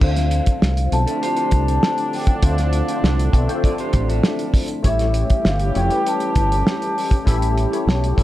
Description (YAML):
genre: lush 1970s-style soul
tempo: 99 BPM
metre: 4/4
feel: straight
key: unclear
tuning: A4 = 441 Hz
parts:
  - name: vibraphone with soft mallets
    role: melody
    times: 0.0-8.2 s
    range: E5 to A5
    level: -24 LUFS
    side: left 1 dB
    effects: slapback echo
  - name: tine electric piano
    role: accompaniment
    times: 0.0-8.2 s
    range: A3 to E5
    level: -25 LUFS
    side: left 4 dB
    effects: ensemble chorus
  - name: tonewheel organ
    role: sustained chords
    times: 0.0-8.2 s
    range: D3 to D4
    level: -32 LUFS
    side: right 2 dB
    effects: none
  - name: fingered electric bass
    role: bass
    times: 0.0-8.2 s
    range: F1 to D2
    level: -19 LUFS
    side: equal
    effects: none
  - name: cloth-damped thuddy drum kit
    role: drums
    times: 0.0-8.2 s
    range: crash cymbal, hi-hat, kick drum, snare drum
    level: -19 LUFS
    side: equal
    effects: none
  - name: electric guitar through a small old amp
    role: riff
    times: 1.1-4.8 s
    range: E4 to D5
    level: -29 LUFS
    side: right 6 dB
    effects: lush chorus
  - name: warm horn section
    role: stabs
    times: 1.2-8.2 s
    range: A2 to G4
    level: -29 LUFS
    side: right 3 dB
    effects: none
room: small room ambience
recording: dark, warm production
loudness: -16 LUFS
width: side -15 dB against mid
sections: 0.0-8.2 A section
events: none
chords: 0.0 Dm7; 4.8 A7